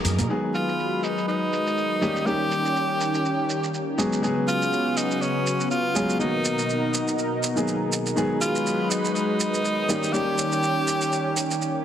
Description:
nu-disco, nu disco; 122 BPM; 4/4; swing 56% on 16ths; G# dorian; A4 = 440 Hz
warm grand piano; accompaniment; 0.0-11.8 s; D#3 to G#4; -27 LUFS; equal; vintage 12-bit sampler grit
lush unison pad; sustained chords; 0.0-11.8 s; B2 to D#5; -27 LUFS; left 1 dB; chorus
electronic hi-hat and shaker; drums; 0.0-11.7 s; -30 LUFS; right 3 dB; overdrive, low-pass filter on snare, low-pass filter on hats, low-pass filter on perc, low-pass filter on room
edgy tenor saxophone; melody; 0.5-11.6 s; C#4 to G4; -26 LUFS; equal; dub echo
moderate plate reverb, RT60 1.3 s, digital ambience; heavily compressed radio sound; -22 LUFS; side -9 dB against mid
0.3-11.8 A section
filter sweep on analog synth pad 0.3-11.8
0.3 G#m7; 2.0 D#7; 4.0 C#7sus4; 6.2 Bmaj7; 8.2 G#m7; 9.9 D#7

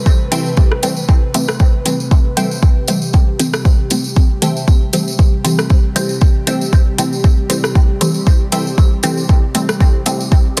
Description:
dub techno; 117 BPM; 4/4; swing 55% on 16ths; A minor; A4 = 440 Hz
airy breathy pad; sustained chords; 0.0-10.6 s; C3 to B4; -26 LUFS; equal; chorus, sidechain pumping
filtered dub chord stab; stabs; 0.0-10.6 s; E3 to C4; -21 LUFS; equal; phaser, sidechain pumping, dub echo
electronic kick drum; drums; 0.1-10.4 s; -13 LUFS; equal; overdrive
tambourine; percussion; 0.1-10.6 s; -28 LUFS; equal
filtered dub chord stab; riff; 0.3-10.6 s; A4 to G5; -32 LUFS; equal; phaser, ensemble chorus, cassette tape, sidechain pumping, dub echo
deep house drum kit; drums; 0.3-10.6 s; hi-hat, rim click; -21 LUFS; equal; overdrive
light reverb; dense, heavily limited modern master; -14 LUFS; mono
0.0-10.6 A section
0.0 Am7

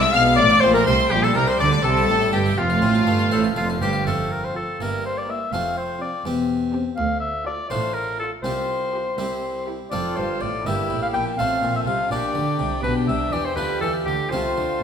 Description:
classical, baroque-style concerto movement with solo episodes; 82 BPM (dotted quarters); 6/8; straight; F major; A4 = 440 Hz
rich chamber violin section; melody; 0.0-14.8 s; F5 to F6; -29 LUFS; left 2 dB
warm oboe; melody; 0.0-14.8 s; F4 to G5; -23 LUFS; left 2 dB
warm chamber violin section; second line; 0.0-14.8 s; E4 to F5; -27 LUFS; left 3 dB
dark chamber viola section; accompaniment; 0.0-14.8 s; F3 to G4; -28 LUFS; right 3 dB
harpsichord; accompaniment; 0.0-14.8 s; C2 to C5; -27 LUFS; left 2 dB
warm chamber cello section; bass; 0.0-14.8 s; C2 to E3; -29 LUFS; right 3 dB
warm studio double bass section; bass; 0.0-14.8 s; E1 to E2; -28 LUFS; right 4 dB
moderate recital hall reverb, RT60 1.4 s; minimal, uncompressed stereo recording; -19 LUFS; side -7 dB against mid
0.0-4.1 A section; 4.1-14.8 B section
0.4 Am; 1.1 Gm/Bb; 1.8 C; 2.6 F; 4.8 Edim/G; 5.5 F; 6.2 C/E; 7.0 Dm; 8.4 Csus4; 9.2 C; 9.9 F; 10.6 Edim/G; 11.4 F/A; 12.1 Gm/Bb; 12.8 G7/B; 14.3 F/C

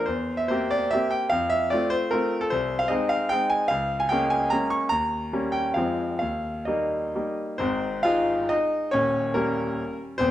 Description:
classical, romantic triple-time dance for piano with dotted rhythms; 123-161 BPM; 3/4; rubato; Ab major; A4 = 435 Hz
bright grand piano; solo; 0.0-10.3 s; Eb1 to Db6; -22 LUFS; equal
moderate recital hall reverb, RT60 1.5 s; close, detailed microphones; -22 LUFS; side -12 dB against mid
0.0-7.6 A section; 7.6-10.3 B section
0.1 C7/E; 1.3 F; 2.5 Ab/C; 3.7 Bbm7/Db; 4.9 Eb7; 5.8 Fm; 6.2 Eb; 7.6 Ab; 8.9 Eb7

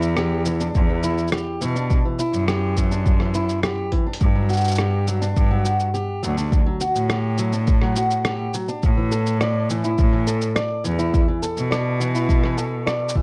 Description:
folktronica; 104 BPM; 4/4; straight; G major; A4 = 445 Hz
fingerpicked steel-string acoustic guitar; arpeggios; 0.0-13.2 s; E3 to D5; -27 LUFS; equal; vintage 12-bit sampler grit, tape echo, plate reverb
bright cello; bass; 0.0-13.1 s; D2 to B2; -25 LUFS; equal
lo-fi sampler-style drum kit; drums; 0.0-13.2 s; cabasa, hi-hat, rim click; -30 LUFS; equal
electronic kick drum; drums; 0.8-13.2 s; -21 LUFS; equal
light reverb; dark, warm production; -21 LUFS; mono
0.0-13.2 A section
drum fill 3.9
0.0 Em7; 4.2 G5; 8.8 Asus4

